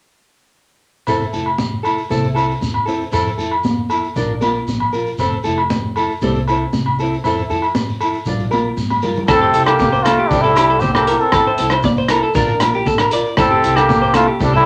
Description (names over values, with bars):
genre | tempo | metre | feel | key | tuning
highlife guitar band | 117 BPM | 4/4 | straight | F major | A4 = 440 Hz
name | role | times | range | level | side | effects
fingerpicked steel-string acoustic guitar | accompaniment | 1.1-14.6 s | G3 to Bb4 | -24 LUFS | equal | none
upright bass | bass | 1.1-14.7 s | F1 to F2 | -26 LUFS | equal | none
agogo bells | percussion | 1.1-14.3 s | none | -24 LUFS | equal | none
congas | percussion | 1.1-14.5 s | none | -25 LUFS | equal | none
shekere | percussion | 1.1-14.6 s | none | -29 LUFS | equal | none
trumpet with cup mute | melody | 9.3-14.7 s | D4 to A4 | -18 LUFS | equal | none
breathy trumpet | second line | 9.3-14.7 s | G3 to C4 | -25 LUFS | equal | none
clean electric guitar | arpeggios | 9.3-14.7 s | G4 to D5 | -21 LUFS | equal | none
vintage drum kit | drums | 9.3-14.5 s | hi-hat, kick drum, rim click | -23 LUFS | equal | none
room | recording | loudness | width
wet club reverb, RT60 0.7 s | none | -16 LUFS | mono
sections
1.1-9.3 A section; 9.3-14.7 B section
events
drum fill 8.8-9.3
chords
1.1 Fmaj7; 2.1 C6; 3.1 Fmaj7; 4.2 Bb; 5.2 Fmaj7; 6.2 C6; 7.2 Fmaj7; 8.3 Bb; 9.3 Fmaj7; 10.3 C6; 11.3 Fmaj7; 12.4 Bb; 13.4 Fmaj7